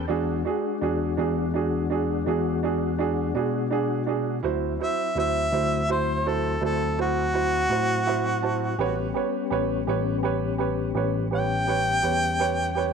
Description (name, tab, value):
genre	blues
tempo	55 BPM (dotted quarters)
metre	12/8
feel	straight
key	unclear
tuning	A4 = 441 Hz
part	warm harmonica	melody	0.0-12.9 s	F#4 to G5	-25 LUFS	equal	none
part	warm upright piano	accompaniment	0.0-12.9 s	D4 to A5	-27 LUFS	right 10 dB	none
part	tonewheel organ	sustained chords	0.0-12.9 s	F#3 to F#4	-31 LUFS	left 16 dB	slow rotary speaker, chorus vibrato
part	bell-like tine electric piano	bass	0.0-12.9 s	A1 to B2	-28 LUFS	left 2 dB	medium stereo tremolo
room	light reverb, small room ambience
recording	1960s-style stereo with parts hard left and right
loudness	-22 LUFS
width	side -6 dB against mid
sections	0.0-12.9 A section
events	upright piano fill 7.7-8.8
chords	0.1 E7; 4.4 D7; 8.8 A7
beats	| 0.09 1.18 2.27 3.35 | 4.44 5.53 6.61 7.70 | 8.79 9.87 10.96 12.04